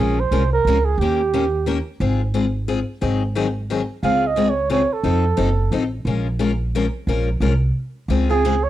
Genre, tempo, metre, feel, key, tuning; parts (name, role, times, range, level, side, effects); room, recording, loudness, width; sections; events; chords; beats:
acoustic string swing (jazz manouche); 177 BPM; 3/4; swing 59% on 8ths; Bb minor; A4 = 440 Hz
trumpet with bucket mute; melody; 0.0-1.9, 4.0-5.9, 8.3-8.7 s; G4 to F5; -20 LUFS; right 6 dB; cassette tape, plate reverb
picked steel-string acoustic guitar; accompaniment; 0.0-8.5 s; Db3 to Bb4; -22 LUFS; left 5 dB; plate reverb
upright bass; bass; 0.0-8.7 s; Gb1 to F2; -21 LUFS; right 1 dB; transformer saturation
moderate studio reverb, RT60 0.6 s; home recording on cassette; -18 LUFS; side -13 dB against mid
0.0-8.1 A section
stop 7.7-8.1
0.0 Bbm7; 1.0 Eb7; 2.0 Ab6; 3.0 Ab7; 4.0 Dbmaj7; 5.0 F7; 6.1 Bbm7; 8.1 Dbmaj7
0.30 0.64 | 0.98 1.32 1.66 | 2.00 2.34 2.67 | 3.01 3.35 3.69 | 4.03 4.37 4.71 | 5.04 5.38 5.72 | 6.06 6.40 6.73 | 7.07 7.41 7.75 | 8.09 8.42